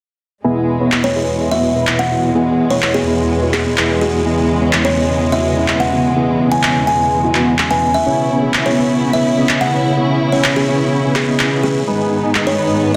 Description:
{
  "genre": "EDM, festival progressive house",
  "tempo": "126 BPM",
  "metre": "4/4",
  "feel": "straight",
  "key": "E major",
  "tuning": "A4 = 438 Hz",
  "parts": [
    { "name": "warm studio string section", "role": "sustained chords", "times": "0.4-13.0 s", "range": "E2 to E4", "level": "-21 LUFS", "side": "equal", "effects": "none" },
    { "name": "dense compressed supersaw", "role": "riff", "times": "0.4-13.0 s", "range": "B3 to E5", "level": "-20 LUFS", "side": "equal", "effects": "low-pass filter" },
    { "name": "electronic handclaps", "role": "drums", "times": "0.9-12.4 s", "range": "none", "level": "-21 LUFS", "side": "equal", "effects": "small room ambience" },
    { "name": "buzzing kalimba", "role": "melody", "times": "1.0-13.0 s", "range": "G#4 to G#5", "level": "-20 LUFS", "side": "equal", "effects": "dub echo" }
  ],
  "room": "moderate lush hall reverb, RT60 1.7 s, studio ambience",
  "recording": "dense, heavily limited modern master",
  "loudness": "-15 LUFS",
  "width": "mono",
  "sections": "0.4-13.0 A section",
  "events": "none",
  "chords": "0.4 E; 8.1 C#m7; 11.9 G#m"
}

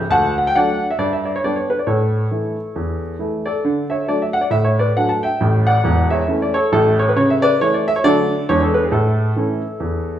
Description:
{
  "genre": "jazz, stride piano",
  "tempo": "136 BPM",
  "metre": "4/4",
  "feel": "swing 60% on 8ths",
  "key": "A major from 7.2 s",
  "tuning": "A4 = 436 Hz",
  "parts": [
    { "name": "clear grand piano", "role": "solo", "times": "0.1-10.2 s", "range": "E1 to A5", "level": "-15 LUFS", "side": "equal", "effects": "none" }
  ],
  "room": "wet large studio reverb, RT60 1.2 s",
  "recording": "band playing live in one room",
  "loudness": "-15 LUFS",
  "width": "side -10 dB against mid",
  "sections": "0.0-10.2 A section",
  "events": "none",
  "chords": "0.1 D; 1.0 G; 1.9 A; 3.6 D; 5.4 A; 7.2 A/C#; 8.0 D; 8.5 E7; 8.9 A"
}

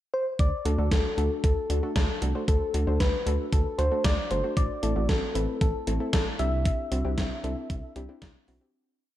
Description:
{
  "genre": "synth-pop",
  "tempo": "115 BPM",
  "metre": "4/4",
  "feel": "straight",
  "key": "unclear",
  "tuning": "A4 = 440 Hz",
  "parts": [
    { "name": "soft struck synth lead", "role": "melody", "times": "0.1-8.4 s", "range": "A4 to E5", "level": "-31 LUFS", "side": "left 1 dB", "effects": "chorus, slapback echo" },
    { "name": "rubbery square bass", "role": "bass", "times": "0.4-8.6 s", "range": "G1 to D2", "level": "-28 LUFS", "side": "equal", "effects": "none" },
    { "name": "gated 80s digital drum machine", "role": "drums", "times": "0.4-8.6 s", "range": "hi-hat, kick drum, snare drum", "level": "-27 LUFS", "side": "equal", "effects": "gated reverb, gated reverb snare" },
    { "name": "soft round pluck", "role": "accompaniment", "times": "0.7-8.7 s", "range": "A3 to C5", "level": "-33 LUFS", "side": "left 1 dB", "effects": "chorus" }
  ],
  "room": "light reverb",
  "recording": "dark, warm production",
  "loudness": "-24 LUFS",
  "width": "side -13 dB against mid",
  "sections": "0.0-0.4 pickup bar; 0.4-8.7 pre-chorus",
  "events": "fade-out 6.7-8.7",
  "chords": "0.4 D; 4.6 Am; 6.4 Cadd9"
}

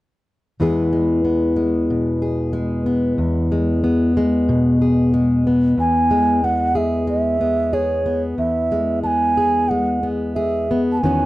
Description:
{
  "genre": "folk",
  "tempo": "92 BPM",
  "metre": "4/4",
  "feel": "straight",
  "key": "E major",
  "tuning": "A4 = 439 Hz",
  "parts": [
    { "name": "fingerpicked plugged-in steel-string acoustic guitar", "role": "accompaniment", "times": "0.6-11.3 s", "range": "E2 to G#4", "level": "-17 LUFS", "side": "left 1 dB", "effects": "none" },
    { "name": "mellow bansuri", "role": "melody", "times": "5.8-11.3 s", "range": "C#5 to A5", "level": "-19 LUFS", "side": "right 2 dB", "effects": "none" }
  ],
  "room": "moderate booth ambience, RT60 0.3 s",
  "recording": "dry, close 1970s-style studio recording",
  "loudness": "-16 LUFS",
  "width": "side -17 dB against mid",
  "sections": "0.6-5.8 A section; 5.8-11.3 B section",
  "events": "none",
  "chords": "0.6 E"
}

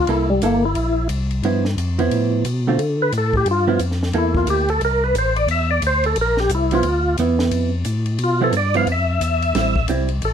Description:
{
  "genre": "soul jazz organ trio",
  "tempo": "178 BPM",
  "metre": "4/4",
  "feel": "swing 62% on 8ths",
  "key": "G mixolydian",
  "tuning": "A4 = 441 Hz",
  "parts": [
    { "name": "percussive tonewheel organ", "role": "melody", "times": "0.0-10.3 s", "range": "G3 to F5", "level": "-19 LUFS", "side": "left 1 dB", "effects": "slow rotary speaker, overdrive, chorus vibrato, plate reverb" },
    { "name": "tonewheel organ", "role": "bass", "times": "0.0-10.3 s", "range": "G1 to D3", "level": "-21 LUFS", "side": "left 1 dB", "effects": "slow rotary speaker" },
    { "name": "hollow-body jazz guitar", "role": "accompaniment", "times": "0.1-4.7, 6.7-10.1 s", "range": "D3 to A4", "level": "-21 LUFS", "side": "right 5 dB", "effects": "none" },
    { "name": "compact cocktail drum kit", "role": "drums", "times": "0.1-10.3 s", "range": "hi-hat, kick drum, ride cymbal, snare drum", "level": "-30 LUFS", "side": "left 1 dB", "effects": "none" }
  ],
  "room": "light reverb",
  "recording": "dark, warm production",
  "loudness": "-16 LUFS",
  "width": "side -8 dB against mid",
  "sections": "0.0-10.3 A section",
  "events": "tonewheel organ solo 0.0-10.3",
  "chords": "0.1 C6; 1.4 G13; 2.8 D5; 3.5 G6; 4.1 C13; 6.8 G13; 9.5 Am7"
}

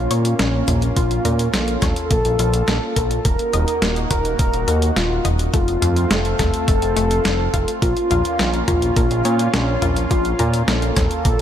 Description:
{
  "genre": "synthwave",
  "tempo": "105 BPM",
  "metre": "4/4",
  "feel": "straight",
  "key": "Bb harmonic minor",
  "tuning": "A4 = 440 Hz",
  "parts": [
    { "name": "wide unison lead", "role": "melody", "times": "0.0-11.4 s", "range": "Db4 to Bb4", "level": "-22 LUFS", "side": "left 1 dB", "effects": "digital delay" },
    { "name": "lush unison pad", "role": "sustained chords", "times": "0.0-11.4 s", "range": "A3 to Gb4", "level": "-26 LUFS", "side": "right 1 dB", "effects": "chorus, sidechain pumping" },
    { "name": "analog pluck", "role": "arpeggios", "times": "0.0-11.4 s", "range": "A3 to Eb5", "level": "-29 LUFS", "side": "left 4 dB", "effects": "none" },
    { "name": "fat analog bass", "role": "bass", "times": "0.0-11.4 s", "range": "Eb1 to Bb2", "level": "-21 LUFS", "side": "equal", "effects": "sidechain pumping" },
    { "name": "detuned 8-bit digital drum machine", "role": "drums", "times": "0.1-11.4 s", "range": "hi-hat, snare drum, toms", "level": "-23 LUFS", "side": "equal", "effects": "none" },
    { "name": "electronic kick drum", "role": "drums", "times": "1.0-11.4 s", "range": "none", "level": "-21 LUFS", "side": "equal", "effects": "none" }
  ],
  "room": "light reverb",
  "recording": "none",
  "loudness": "-16 LUFS",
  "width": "side -10 dB against mid",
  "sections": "0.0-11.4 A section",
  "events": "none",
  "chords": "0.0 Bbm; 3.2 Ebm; 5.5 F; 7.8 Bbm"
}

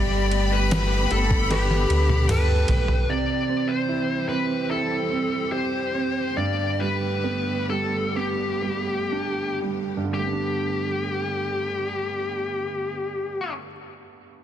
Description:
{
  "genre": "pop ballad",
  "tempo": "57-76 BPM",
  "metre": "4/4",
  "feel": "straight",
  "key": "G major",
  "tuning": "A4 = 440 Hz",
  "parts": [
    { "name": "high-gain lead guitar", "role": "melody", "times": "0.0-13.5 s", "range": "G4 to D5", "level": "-27 LUFS", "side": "left 3 dB", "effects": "distortion" },
    { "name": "clear studio violin section", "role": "second line", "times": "0.0-3.1 s", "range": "G5 to B5", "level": "-30 LUFS", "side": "left 2 dB", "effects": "ping-pong delay" },
    { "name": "clear concert grand piano", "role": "accompaniment", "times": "0.0-14.4 s", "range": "G2 to B4", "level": "-28 LUFS", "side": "right 5 dB", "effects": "none" },
    { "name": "clear studio string section", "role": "sustained chords", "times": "0.0-13.5 s", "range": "D3 to G4", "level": "-33 LUFS", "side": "left 3 dB", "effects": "none" },
    { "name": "sub bass with octave", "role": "bass", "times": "0.0-3.1 s", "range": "G1 to D2", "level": "-22 LUFS", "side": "equal", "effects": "none" },
    { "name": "trip hop sampler-style drum kit", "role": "drums", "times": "0.3-3.1 s", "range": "kick drum, ride cymbal, snare drum, toms", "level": "-26 LUFS", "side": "equal", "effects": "none" },
    { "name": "tambourine", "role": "percussion", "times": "0.7-2.5 s", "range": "none", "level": "-44 LUFS", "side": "left 10 dB", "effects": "none" }
  ],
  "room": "light reverb, studio reverb",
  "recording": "dense, heavily limited modern master",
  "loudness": "-22 LUFS",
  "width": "side -10 dB against mid",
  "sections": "0.0-3.1 A section; 3.1-10.1 B section; 10.1-14.4 C section",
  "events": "drum fill 1.5-3.1; slowing down 3.1-10.1",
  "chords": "0.0 Gadd9; 3.1 C; 6.4 Gadd9"
}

